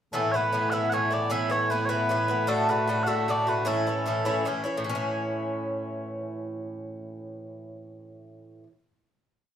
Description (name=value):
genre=celtic folk, Celtic jig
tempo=102 BPM (dotted quarters)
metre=6/8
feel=straight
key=A major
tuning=A4 = 440 Hz
part: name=mellow small bagpipes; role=melody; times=0.1-4.5 s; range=A2 to F#5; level=-25 LUFS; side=right 1 dB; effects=none
part: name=Irish bouzouki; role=accompaniment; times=0.1-8.7 s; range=A2 to F#4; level=-29 LUFS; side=left 1 dB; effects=none
room=wet small room reverb, RT60 0.6 s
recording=heard from further back in the room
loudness=-24 LUFS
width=side -9 dB against mid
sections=0.1-4.8 A section; 4.8-7.2 final chord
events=none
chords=0.1 Asus2; 2.5 D; 3.7 A